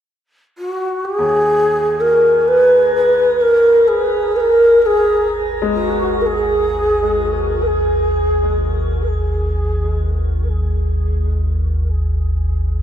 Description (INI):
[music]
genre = dark ambient drone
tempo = 64 BPM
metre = 4/4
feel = straight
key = G# minor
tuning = A4 = 440 Hz
[part]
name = breathy mellow long shakuhachi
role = melody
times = 0.6-7.6 s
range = F#4 to B4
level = -14 LUFS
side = equal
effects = shimmer reverb, tape echo
[part]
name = deep rumbling drone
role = drone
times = 1.9-12.8 s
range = G#1 to D#2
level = -19 LUFS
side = equal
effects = built-in reverb, lush chorus
[part]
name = clear baby grand piano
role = arpeggios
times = 1.2-12.8 s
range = D#2 to G#3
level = -27 LUFS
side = left 4 dB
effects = shimmer reverb, tape echo
[sound]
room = wet spring reverb, RT60 2.4 s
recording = echo-heavy mix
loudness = -13 LUFS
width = side -9 dB against mid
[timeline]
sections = 0.6-12.8 A section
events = fade-in on synth drone 0.6-12.8; fade-in on grand piano 0.6-12.8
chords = 0.6 G#5